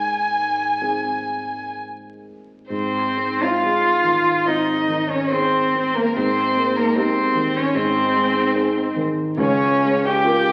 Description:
classical, slow romantic movement for piano trio; 61-76 BPM; 4/4; rubato; Ab major; A4 = 440 Hz
warm violin; melody; 0.0-10.5 s; Bb4 to Ab5; -26 LUFS; equal
dark baby grand piano; accompaniment; 0.0-10.5 s; Db2 to Bb4; -26 LUFS; equal
rich cello; second line; 2.7-10.5 s; Bb3 to G4; -21 LUFS; equal
wet recital hall reverb, RT60 1.3 s; very old 78 rpm record, vinyl crackle; -20 LUFS; mono
0.0-2.7 A section; 2.7-10.5 B section
0.0 Ab; 6.2 Eb/Ab; 7.7 Ab; 9.4 Bbm7/Db
0.81 1.75 | 2.70 3.64 4.46 5.31 | 6.16 6.96 7.75 8.55 | 9.39 10.26

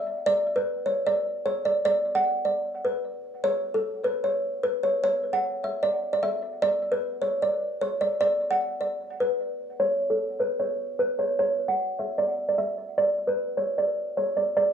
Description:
hip hop; 151 BPM; 4/4; half-time; A4 = 440 Hz
kalimba; solo; 0.0-14.7 s; A4 to F#5; -24 LUFS; right 1 dB; low-pass filter, cassette tape, analog delay
light reverb; home recording on cassette, studio reverb; -24 LUFS; side -8 dB against mid
0.0-3.4 A section; 3.4-9.8 B section; 9.8-14.7 C section
filter sweep on kalimba 9.8-14.7
| 0.27 0.66 1.06 1.46 | 1.85 2.25 2.65 3.05 | 3.44 3.84 4.24 4.63 | 5.03 5.43 5.83 6.22 | 6.62 7.02 7.42 7.81 | 8.21 8.61 9.01 9.40 | 9.80 10.20 10.60 10.99 | 11.39 11.79 12.19 12.58 | 12.98 13.38 13.78 14.17 | 14.57

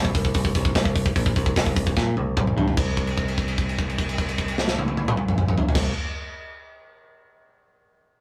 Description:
heavy metal; 149 BPM; 4/4; straight; A4 = 440 Hz
modern bright picked electric bass; bass; 0.0-5.9 s; Bb1 to Bb2; -29 LUFS; equal
tight metal drum kit; drums; 0.0-5.8 s; crash cymbal, hi-hat, kick drum, snare drum, toms; -25 LUFS; equal
light reverb; rough rehearsal-room recording; -23 LUFS; mono
0.0-2.8 A section; 2.8-6.0 B section
drum fill 2.0-2.8; held note 2.8-5.8
0.35 0.76 | 1.16 1.56 1.96 2.37 | 2.77 3.17 3.58 3.98 | 4.38 4.79 5.19 5.59

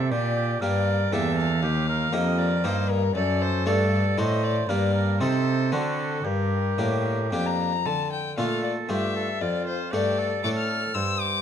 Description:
classical, baroque-style sonata movement with continuo; 117 BPM; 3/4; rubato; G minor, D minor from 7.9 s; A4 = 441 Hz
warm violin; melody; 0.0-11.4 s; A4 to F6; -29 LUFS; left 8 dB
warm oboe; second line; 0.0-11.4 s; F4 to C5; -31 LUFS; right 8 dB
harpsichord; accompaniment; 0.0-11.4 s; Eb2 to A4; -28 LUFS; left 1 dB
rich cello; bass; 0.0-11.4 s; Eb2 to D3; -26 LUFS; right 2 dB
light reverb; close, detailed microphones; -22 LUFS; side -8 dB against mid
0.0-7.9 A section; 7.9-11.4 A section
0.0 Gm; 1.6 Eb; 3.2 D/F#; 4.7 Gm; 5.2 Adim/C; 5.7 D7; 6.3 Gm; 7.9 Dm; 9.4 Dm/F
| 0.12 0.62 1.13 | 1.63 2.13 2.65 | 3.16 3.67 4.18 | 4.69 5.21 5.72 | 6.25 6.79 7.33 | 7.86 8.38 8.90 | 9.42 9.94 10.45 | 10.95

